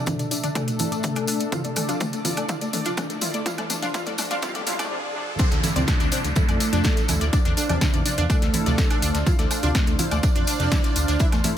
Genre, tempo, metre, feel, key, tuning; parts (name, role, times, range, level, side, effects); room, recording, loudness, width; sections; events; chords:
melodic techno; 124 BPM; 4/4; straight; D minor; A4 = 441 Hz
lush unison pad; sustained chords; 0.0-11.6 s; D4 to F5; -34 LUFS; left 1 dB; chorus, sidechain pumping
synth brass stab; stabs; 0.0-10.7 s; C3 to D4; -33 LUFS; right 1 dB
riser, swell and downlifter; sound effects; 0.8-9.3 s; -35 LUFS; equal
fat analog lead; melody; 0.1-11.5 s; D3 to F4; -29 LUFS; equal; ensemble chorus, cassette tape, sidechain pumping, tape echo
big bright polysynth; second line; 0.1-11.5 s; D4 to F5; -34 LUFS; equal; analog chorus, sidechain pumping, ping-pong delay
analog pluck; arpeggios; 0.1-11.5 s; D4 to D5; -30 LUFS; left 1 dB; chorus, sidechain pumping, ping-pong delay
deep house drum kit; drums; 0.1-11.5 s; congas, hi-hat, snare drum, toms, woodblock; -28 LUFS; equal; overdrive
electronic kick drum; drums; 0.1-11.3 s; -22 LUFS; equal; overdrive, high-pass filter on kick, high-pass filter on room
tambourine; percussion; 0.1-11.5 s; -34 LUFS; left 2 dB
dusty soul sampler-style drum kit; drums; 5.4-11.6 s; hi-hat, snare drum, tambourine; -37 LUFS; right 2 dB
dark detuned saw bass; bass; 5.5-11.4 s; D2 to F2; -25 LUFS; equal; sidechain pumping
little or no reverb; high-pass filter; -20 LUFS; side -10 dB against mid
0.0-5.4 A section; 5.4-11.6 B section
build-up 0.0-5.4; drum fill 0.0-4.9; filter sweep on synth pluck 0.0-5.4; filter sweep on analog synth lead 0.0-5.4; filter sweep on analog polysynth 0.0-5.4; filter sweep on synth stab 0.0-5.4; swell 4.4-5.4; break 4.9-5.4; drop 5.4-11.6
0.0 Dm7